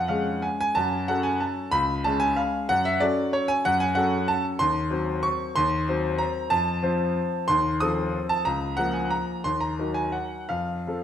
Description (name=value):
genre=classical, piano waltz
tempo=161-198 BPM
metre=3/4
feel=rubato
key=F# minor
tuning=A4 = 443 Hz
part: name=clear grand piano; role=solo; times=0.0-11.0 s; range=C#2 to Eb6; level=-22 LUFS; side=equal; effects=none
room=wet recital hall reverb, RT60 1.3 s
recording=none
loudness=-22 LUFS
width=side -9 dB against mid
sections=0.0-11.0 A section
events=none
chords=0.0 C#/E#; 0.8 F#m; 1.7 C#; 2.7 F#m; 4.6 Cdim/Eb; 6.5 F; 7.5 F7/Eb; 8.5 Bbm/Db; 9.5 Ebm; 10.5 F